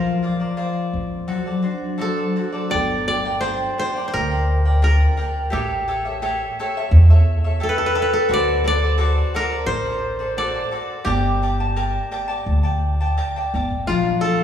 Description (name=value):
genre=mexican folk, mariachi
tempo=86 BPM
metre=4/4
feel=rubato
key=G harmonic minor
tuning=A4 = 440 Hz
part: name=koto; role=melody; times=0.0-14.4 s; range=F4 to D5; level=-23 LUFS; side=equal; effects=none
part: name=cavaquinho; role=accompaniment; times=0.0-14.4 s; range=D4 to A5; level=-26 LUFS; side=equal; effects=none
part: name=concert harp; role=arpeggios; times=0.0-4.8, 13.9-14.4 s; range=F3 to F5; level=-24 LUFS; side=left 3 dB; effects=none
part: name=upright bass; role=bass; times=0.0-14.1 s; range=G1 to E2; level=-18 LUFS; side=equal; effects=none
room=wet recital hall reverb, RT60 1.8 s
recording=recorded in a church or concert hall, small room ambience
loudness=-18 LUFS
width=side -9 dB against mid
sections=0.0-2.7 A section; 2.7-13.9 B section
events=none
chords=0.0 Bbadd9; 1.3 D7; 2.7 Gm; 5.5 A7; 8.3 D7; 11.1 Gmadd9; 13.9 Bb